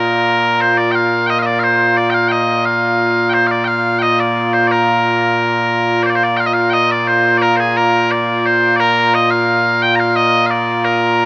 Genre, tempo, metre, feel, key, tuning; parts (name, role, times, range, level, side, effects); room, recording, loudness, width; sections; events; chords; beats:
scottish traditional; 88 BPM; 2/4; straight; Bb major; A4 = 440 Hz
loud bright bagpipes; solo; 0.0-11.3 s; Bb2 to Bb5; -14 LUFS; equal
moderate huge ambient reverb, RT60 7.7 s; -14 LUFS; mono
0.0-6.1 A section; 6.1-11.3 A section
| 0.61 1.29 | 1.97 2.66 | 3.34 4.02 | 4.70 5.38 | 6.07 6.75 | 7.43 8.11 | 8.79 9.47 | 10.16 10.84